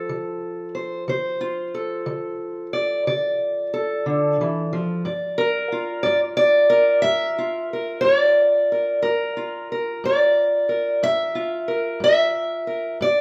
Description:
acoustic country blues, solo or duo; 60 BPM (dotted quarters); 12/8; straight; A4 = 440 Hz
fingerpicked steel-string acoustic guitar; solo; 0.0-13.2 s; G2 to E5; -21 LUFS; equal
moderate large studio reverb, RT60 1.1 s; band playing live in one room; -21 LUFS; mono
0.0-13.2 A section
0.0 Dm7; 5.1 Gm7

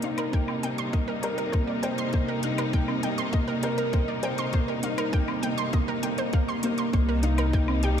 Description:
piano and strings electronica; 100 BPM; 4/4; straight; C minor; A4 = 440 Hz
rich studio string section; sustained chords; 0.0-8.0 s; C3 to Eb4; -31 LUFS; left 1 dB; sidechain pumping, low-pass filter
analog pluck; arpeggios; 0.0-7.9 s; C4 to C6; -33 LUFS; right 3 dB; chorus, sidechain pumping, ping-pong delay
felt-muted upright piano; riff; 0.0-8.0 s; Bb3 to C5; -29 LUFS; right 1 dB; ping-pong delay
electronic hi-hat and woodblock; drums; 0.0-8.0 s; -37 LUFS; left 2 dB
electronic kick drum; drums; 0.3-7.7 s; -25 LUFS; equal
round analog bass; bass; 6.9-8.0 s; C2; -25 LUFS; equal; sidechain pumping
moderate echo chamber reverb, RT60 1.8 s; -24 LUFS; side -8 dB against mid
0.0-6.9 A section; 6.9-8.0 B section
build-up 0.0-6.9; drop 6.9-8.0
0.0 Cm7

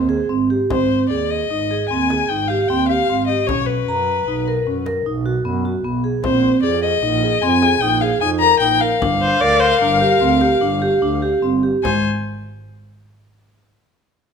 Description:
contemporary instrumental, chamber music in an uneven meter; 151 BPM; 7/4; straight; A4 = 440 Hz
dark violin; melody; 0.0-12.0 s; B4 to Bb5; -19 LUFS; left 7 dB
vibraphone with medium mallets; arpeggios; 0.0-12.0 s; Ab3 to A#5; -18 LUFS; right 2 dB
muted double bass; bass; 0.0-12.0 s; G1 to F#2; -24 LUFS; right 3 dB
frame drum; percussion; 0.1-12.0 s; -28 LUFS; left 4 dB
rich viola; second line; 9.2-12.0 s; Bb4 to D5; -20 LUFS; equal
moderate recital hall reverb, RT60 1.4 s; minimal, uncompressed stereo recording; -15 LUFS; side -6 dB against mid
0.7-11.8 A section; 11.8-14.3 B section
0.0 Abmaj7; 3.5 Bmaj7sus2; 6.2 Bb7sus4; 9.0 Gm7; 11.8 N.C.

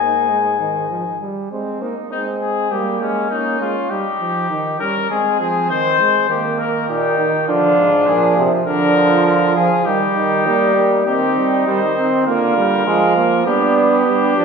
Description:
classical, imitative canzona for brass ensemble; 100 BPM; 4/4; straight; Ab major, C minor from 11.1 s; A4 = 440 Hz
warm trumpet; melody; 0.0-14.4 s; Db4 to Ab5; -19 LUFS; left 5 dB
mellow flugelhorn; second line; 0.0-14.4 s; Bb3 to F4; -21 LUFS; right 3 dB
clear trombone; accompaniment; 0.0-14.4 s; Eb3 to D4; -20 LUFS; right 2 dB
warm euphonium; bass; 0.0-1.2, 6.9-14.4 s; Ab2 to G3; -19 LUFS; right 2 dB
wet recital hall reverb, RT60 1.4 s; heard from further back in the room; -14 LUFS; side -5 dB against mid
0.0-1.5 A section; 1.5-11.1 B section; 11.1-14.4 C section
0.0 Ab5; 1.5 Ab; 2.7 Gdim; 3.9 Eb; 5.1 Ab; 6.3 Eb; 7.5 Ddim; 8.7 Bb/D; 9.9 Eb; 11.1 Cm/Eb; 12.3 Bb/D; 13.5 G

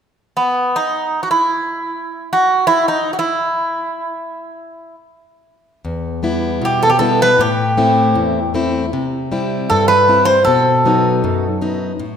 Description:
greek folk, Greek bouzouki band; 78 BPM; 2/4; straight; E harmonic minor; A4 = 442 Hz
Greek bouzouki; melody; 0.4-11.6 s; B3 to C5; -14 LUFS; equal
picked plugged-in steel-string acoustic guitar; accompaniment; 5.8-12.2 s; E2 to E4; -17 LUFS; left 2 dB
wet scoring stage reverb, RT60 1.8 s; minimal, uncompressed stereo recording; -13 LUFS; side -7 dB against mid
0.0-5.8 A section; 5.8-12.2 B section
0.0 N.C.; 5.8 Em; 7.4 Am; 8.9 C; 10.5 B

